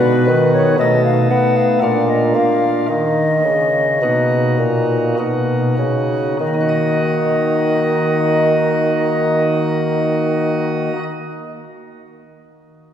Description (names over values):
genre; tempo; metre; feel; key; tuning
classical, baroque-style sonata movement with continuo; 48-60 BPM; 3/4; straight; Eb minor; A4 = 441 Hz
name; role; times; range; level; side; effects
bright baroque flute; melody; 0.0-10.9 s; B4 to Gb5; -19 LUFS; left 1 dB; none
pipe organ, sparkling flutes; accompaniment; 0.0-11.0 s; Bb2 to Eb5; -18 LUFS; equal; none
mellow bassoon; bass; 0.0-10.9 s; Bb2 to B3; -19 LUFS; equal; none
room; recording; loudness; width
wet church reverb, RT60 3.6 s; recorded in a church or concert hall; -14 LUFS; side -9 dB against mid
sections
0.0-6.4 A section; 6.4-10.1 B section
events
slowing down 0.0-6.4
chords
0.0 B; 0.8 B7; 1.8 Bb; 2.9 Ebm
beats
0.79 1.82 | 2.89 4.01 5.18 | 6.40 7.64 8.89